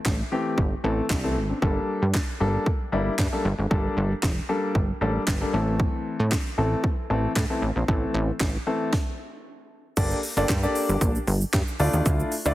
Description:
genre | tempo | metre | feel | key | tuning
dance-pop | 115 BPM | 4/4 | straight | G dorian | A4 = 439 Hz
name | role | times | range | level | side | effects
plucky analog bass | bass | 0.1-12.5 s | F1 to A2 | -25 LUFS | equal | sidechain pumping
house drum kit | drums | 0.1-12.5 s | crash cymbal, handclaps, hi-hat, kick drum, shaker, snare drum | -26 LUFS | equal | overdrive
warm grand piano | accompaniment | 0.3-12.5 s | E3 to D5 | -27 LUFS | left 2 dB | sidechain pumping
room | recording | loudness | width
light reverb | heavily compressed radio sound, multiband compression | -22 LUFS | side -15 dB against mid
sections
0.0-10.0 A section; 10.0-12.5 B section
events
stop 8.9-10.0; drop 10.0-12.5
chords
0.0 Am; 1.6 Gmadd9; 5.5 Am; 10.0 Gmadd9; 11.8 Dmadd9

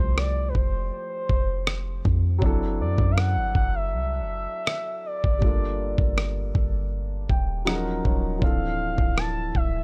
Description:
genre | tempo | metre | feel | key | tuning
contemporary R&B | 80 BPM | 4/4 | straight | unclear | A4 = 441 Hz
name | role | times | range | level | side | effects
gliding portamento lead | melody | 0.0-9.8 s | B4 to A5 | -33 LUFS | equal | chorus
dark baby grand piano | accompaniment | 0.0-9.8 s | E3 to G5 | -34 LUFS | equal | none
warm 808-style bass | bass | 0.0-9.8 s | D1 to F#2 | -29 LUFS | equal | none
dusty soul sampler-style drum kit | drums | 0.2-9.7 s | kick drum, rim click | -25 LUFS | equal | none
room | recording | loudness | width
little or no reverb | dry, gritty hardware recording, lossy compression artefacts | -25 LUFS | mono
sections
0.0-9.8 A section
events
grand piano fill 6.9-8.4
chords
0.0 Fmaj7; 2.4 D7/F#; 5.4 Gm7; 7.7 Ebm7; 8.4 Dm7

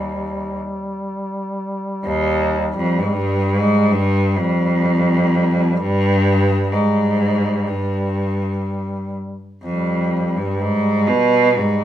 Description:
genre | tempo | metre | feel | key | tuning
caucasian folk, Caucasian lament | 63 BPM | 4/4 | rubato | G phrygian dominant | A4 = 440 Hz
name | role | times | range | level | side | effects
bright cello | melody | 0.0-11.8 s | Eb2 to B2 | -16 LUFS | right 1 dB | none
mellow duduk | drone | 0.0-11.8 s | G3 | -25 LUFS | left 1 dB | none
room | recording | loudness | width
moderate studio reverb, RT60 0.6 s | band playing live in one room | -16 LUFS | side -11 dB against mid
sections
0.0-11.8 A section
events
none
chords
none

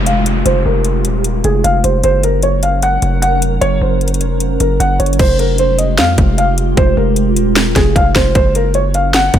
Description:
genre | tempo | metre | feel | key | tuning
hip hop, trap | 152 BPM | 4/4 | half-time | F minor | A4 = 441 Hz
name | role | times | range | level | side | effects
felt-muted upright piano | melody | 0.0-9.4 s | Ab4 to Gb5 | -16 LUFS | equal | low-pass filter
glassy FM pad | sustained chords | 0.0-9.4 s | Gb3 to Bb4 | -20 LUFS | right 1 dB | ensemble chorus, built-in reverb, phaser, low-pass filter
distorted 808-style bass | bass | 0.0-9.4 s | Eb1 to F2 | -15 LUFS | equal | distortion
downlifter | sound effects | 0.0-2.0 s | none | -26 LUFS | left 1 dB | none
trap drum kit | drums | 0.1-9.4 s | crash cymbal, hi-hat, kick drum, snare drum | -15 LUFS | equal | none
room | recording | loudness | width
light reverb | none | -11 LUFS | side -10 dB against mid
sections
0.0-5.2 A section; 5.2-9.4 B section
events
filter sweep 0.0-5.2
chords
0.0 Fmadd9; 2.0 Gb; 5.2 Fmadd9; 8.4 Gb

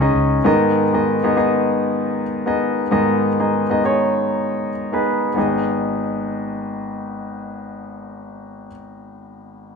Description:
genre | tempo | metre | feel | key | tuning
pop | 98 BPM | 4/4 | swing 56% on 16ths | G# minor | A4 = 437 Hz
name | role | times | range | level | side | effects
warm concert grand piano | accompaniment | 0.0-9.8 s | G#1 to F#5 | -18 LUFS | left 1 dB | none
room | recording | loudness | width
wet stone room reverb, RT60 1.2 s | band playing live in one room | -17 LUFS | side -5 dB against mid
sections
0.0-5.4 A section; 5.4-7.8 B section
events
none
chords
0.5 G#m

